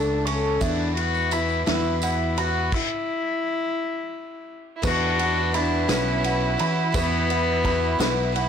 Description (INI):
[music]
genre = indie folk with a building arrangement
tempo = 57 BPM (dotted quarters)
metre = 6/8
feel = straight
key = unclear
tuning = A4 = 440 Hz
[part]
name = warm cello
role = melody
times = 0.0-8.3 s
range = B3 to F#4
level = -26 LUFS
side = left 4 dB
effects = none
[part]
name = picked twelve-string acoustic guitar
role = accompaniment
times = 0.0-8.5 s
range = E3 to A4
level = -30 LUFS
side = left 5 dB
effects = none
[part]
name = dark upright piano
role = arpeggios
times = 0.0-8.5 s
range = B4 to C#6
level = -29 LUFS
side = right 6 dB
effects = none
[part]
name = fingered electric bass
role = bass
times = 0.0-8.5 s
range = B1 to E3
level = -26 LUFS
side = equal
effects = none
[part]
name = natural country drum kit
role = drums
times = 0.3-8.5 s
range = crash cymbal, kick drum, ride cymbal, snare drum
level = -29 LUFS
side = equal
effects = none
[part]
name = dark brass ensemble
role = sustained chords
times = 0.6-8.5 s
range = F#4 to B5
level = -38 LUFS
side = left 1 dB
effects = none
[part]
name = tambourine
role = percussion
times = 0.6-8.4 s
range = none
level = -38 LUFS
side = right 8 dB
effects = none
[part]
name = clear fiddle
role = second line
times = 4.8-8.5 s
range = D4 to E4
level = -28 LUFS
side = right 5 dB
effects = none
[sound]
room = light reverb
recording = blown-out, overdriven recording, overdrive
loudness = -21 LUFS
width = side -8 dB against mid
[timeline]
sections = 0.0-4.8 A section; 4.8-8.5 B section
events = stop 2.7-4.8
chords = 0.0 A/C#; 0.6 Esus2; 2.7 N.C.; 4.8 Esus2